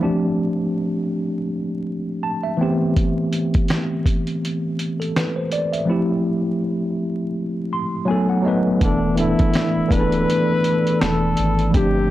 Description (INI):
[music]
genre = lo-fi hip hop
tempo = 82 BPM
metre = 4/4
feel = swing 58% on 16ths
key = unclear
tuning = A4 = 440 Hz
[part]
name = tine electric piano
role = accompaniment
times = 0.0-12.1 s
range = E3 to C6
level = -20 LUFS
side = equal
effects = medium stereo tremolo, cassette tape, low-pass filter
[part]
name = lo-fi sampler-style drum kit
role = drums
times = 3.0-11.9 s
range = finger snaps, hi-hat, kick drum, snare drum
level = -21 LUFS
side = equal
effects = none
[part]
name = trumpet with bucket mute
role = melody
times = 8.8-12.1 s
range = D4 to B4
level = -22 LUFS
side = left 2 dB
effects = low-pass filter
[part]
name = dark analog pad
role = sustained chords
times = 9.7-12.1 s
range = G4 to E6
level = -32 LUFS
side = right 1 dB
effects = chorus, low-pass filter
[part]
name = saturated sub bass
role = bass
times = 8.8-12.1 s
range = D1 to G#1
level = -24 LUFS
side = equal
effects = none
[sound]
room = little or no reverb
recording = dry, gritty hardware recording, vinyl crackle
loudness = -18 LUFS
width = side -14 dB against mid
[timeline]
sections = 0.0-8.8 A section; 8.8-12.1 B section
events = none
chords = 0.0 G9sus4; 2.6 Am9; 5.9 Fmaj9; 8.1 B7; 8.8 E7sus4